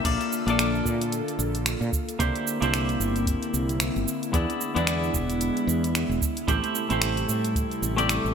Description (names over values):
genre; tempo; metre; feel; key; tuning
sunset chillout; 112 BPM; 4/4; swing 58% on 16ths; unclear; A4 = 440 Hz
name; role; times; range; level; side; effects
semi-hollow electric guitar; accompaniment; 0.0-8.3 s; A3 to D5; -27 LUFS; moving between left 6 dB and right 4 dB; auto-pan, ping-pong delay
woody fretless electric bass; bass; 0.0-8.3 s; E1 to Bb2; -28 LUFS; equal; none
airy breathy pad; sustained chords; 0.1-8.3 s; C3 to A4; -31 LUFS; right 1 dB; chorus
deep house drum kit; drums; 0.1-8.3 s; cabasa, crash cymbal, finger snaps, hi-hat; -30 LUFS; right 2 dB; small room ambience
electronic kick drum; drums; 0.1-7.7 s; none; -28 LUFS; equal; small room ambience
room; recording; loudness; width
moderate lush hall reverb, RT60 2.2 s; rough home demo mix; -23 LUFS; side -7 dB against mid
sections
0.1-8.3 A section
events
none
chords
0.1 Bbmaj7; 2.2 C9; 4.3 E7; 6.5 Am7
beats
| 0.06 0.59 1.13 1.66 | 2.20 2.73 3.27 3.81 | 4.34 4.88 5.41 5.95 | 6.48 7.02 7.55 8.09